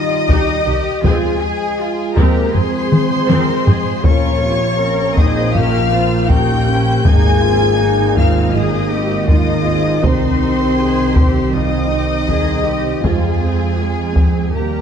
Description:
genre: cinematic, epic orchestral film score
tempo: 80 BPM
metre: 4/4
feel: straight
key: unclear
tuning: A4 = 435 Hz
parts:
  - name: rich chamber violin section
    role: melody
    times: 0.0-14.8 s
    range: Ab5 to Ab6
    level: -26 LUFS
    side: left 5 dB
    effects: none
  - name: mellow large flute ensemble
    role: second line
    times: 0.0-14.8 s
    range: Ab4 to Ab5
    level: -24 LUFS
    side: equal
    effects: none
  - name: rich symphonic violin section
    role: second line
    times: 0.0-14.8 s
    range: Ab4 to Ab5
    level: -24 LUFS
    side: left 2 dB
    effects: none
  - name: clear trombone section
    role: sustained chords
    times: 0.0-14.8 s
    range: Eb3 to C4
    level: -24 LUFS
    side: right 2 dB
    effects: none
  - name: dark French horn section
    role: sustained chords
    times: 0.0-14.8 s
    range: Ab3 to Db5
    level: -21 LUFS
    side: left 5 dB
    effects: none
  - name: clear symphonic cello section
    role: bass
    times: 0.0-14.8 s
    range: Db4 to Bb4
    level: -25 LUFS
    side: right 2 dB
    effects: none
  - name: clear symphonic viola section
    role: accompaniment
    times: 0.3-14.8 s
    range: C3 to Db5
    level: -25 LUFS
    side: right 1 dB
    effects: none
  - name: clear symphonic double bass section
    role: bass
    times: 0.3-14.8 s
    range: Ab1 to F2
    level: -19 LUFS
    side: right 3 dB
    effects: none
  - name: taiko ensemble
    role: drums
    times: 0.3-14.8 s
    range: none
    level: -16 LUFS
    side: left 1 dB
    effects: none
room: moderate scoring stage reverb, RT60 1.5 s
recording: dark, warm production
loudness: -12 LUFS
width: side -8 dB against mid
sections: 0.0-14.8 A section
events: drum fill 2.9-4.0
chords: 0.0 Cm; 1.0 Fm; 4.0 Bbmadd9; 7.0 Ab; 10.0 Cm; 13.0 Fm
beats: 0.28 | 1.03 1.79 2.54 3.29 | 4.04 4.79 5.54 6.29 | 7.04 7.79 8.54 9.29 | 10.04 10.78 11.53 12.28 | 13.03 13.78 14.53

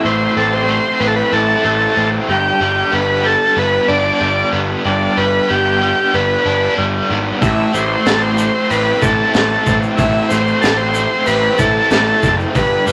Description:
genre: psychedelic rock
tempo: 94 BPM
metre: 4/4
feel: straight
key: A minor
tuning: A4 = 435 Hz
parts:
  - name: combo organ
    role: melody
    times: 0.0-12.9 s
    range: D4 to D5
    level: -18 LUFS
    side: equal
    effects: none
  - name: overdriven electric guitar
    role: riff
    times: 0.0-12.9 s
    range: G2 to E4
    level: -21 LUFS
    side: equal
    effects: tremolo
  - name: fuzz picked electric bass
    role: bass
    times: 0.0-12.9 s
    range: F#1 to A1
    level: -22 LUFS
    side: equal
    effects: overdrive
  - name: crunchy breakbeat drum kit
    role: drums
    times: 7.4-12.7 s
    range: hi-hat, kick drum, snare drum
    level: -22 LUFS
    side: equal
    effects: none
  - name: egg shaker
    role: percussion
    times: 7.4-12.9 s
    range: none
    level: -40 LUFS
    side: equal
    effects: none
room: moderate studio reverb, RT60 0.8 s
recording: none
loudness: -15 LUFS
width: mono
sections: 0.0-12.9 A section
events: none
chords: 0.0 Am; 2.3 G; 7.4 Am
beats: 0.38 1.01 1.65 | 2.29 2.93 3.57 4.21 | 4.86 5.50 6.14 6.78 | 7.42 8.06 8.70 9.35 | 9.99 10.63 11.27 11.91 | 12.55

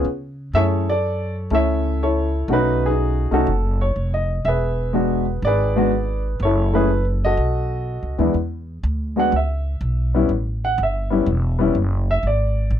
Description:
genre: jazz piano trio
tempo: 123 BPM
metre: 4/4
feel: swing 69% on 8ths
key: E mixolydian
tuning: A4 = 440 Hz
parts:
  - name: warm baby grand piano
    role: melody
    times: 0.0-12.8 s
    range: E2 to F#5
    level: -20 LUFS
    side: left 1 dB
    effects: none
  - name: upright bass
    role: bass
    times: 0.0-12.8 s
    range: E1 to C#3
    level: -21 LUFS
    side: equal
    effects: none
room: light reverb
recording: close, detailed microphones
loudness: -18 LUFS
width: side -10 dB against mid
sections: 0.0-8.3 A section; 8.3-12.8 B section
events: grand piano solo 8.3-12.8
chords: 0.0 N.C.; 0.5 F#m7; 2.5 B7; 4.5 E7; 6.4 F#m7; 7.4 B9; 8.3 E7(no3); 10.3 A7(no3); 12.2 E7 (rootless)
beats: 0.06 | 0.55 1.04 1.52 2.01 | 2.50 2.99 3.48 3.96 | 4.45 4.94 5.43 5.91 | 6.40 6.89 7.38 7.86 | 8.35 8.84 9.32 9.81 | 10.29 10.78 11.27 11.75 | 12.24 12.72

